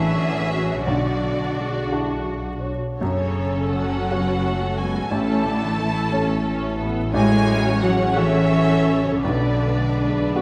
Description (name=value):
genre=cinematic, emotional film score for orchestra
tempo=53-60 BPM (dotted quarters)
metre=6/8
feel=rubato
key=F# minor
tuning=A4 = 439 Hz
part: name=rich symphonic violin section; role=melody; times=0.0-10.4 s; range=F#4 to C#5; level=-34 LUFS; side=equal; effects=none
part: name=warm symphonic violin section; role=second line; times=0.0-10.3 s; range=C#5 to A5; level=-30 LUFS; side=equal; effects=none
part: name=felt-muted upright piano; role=accompaniment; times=0.0-10.4 s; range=A1 to A4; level=-30 LUFS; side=equal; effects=none
part: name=warm symphonic viola section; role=accompaniment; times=0.0-10.4 s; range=A3 to A4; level=-30 LUFS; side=equal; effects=none
part: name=warm French horn section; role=sustained chords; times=0.0-10.4 s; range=D3 to C#5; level=-30 LUFS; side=equal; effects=none
part: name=concert harp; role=arpeggios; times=0.0-10.4 s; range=F#2 to G#5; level=-32 LUFS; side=equal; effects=none
part: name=warm chamber double bass section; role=bass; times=0.0-10.4 s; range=F#1 to B1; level=-30 LUFS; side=equal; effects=none
part: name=warm studio cello section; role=bass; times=0.0-10.3 s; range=C#3 to A3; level=-27 LUFS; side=equal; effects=none
room=wet scoring stage reverb, RT60 1.5 s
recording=vinyl crackle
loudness=-21 LUFS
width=mono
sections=0.0-10.4 A section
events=none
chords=0.0 Dmaj7/A; 0.9 Bm; 3.0 F#madd9; 5.1 A; 7.1 F#m9/A; 9.2 Bm7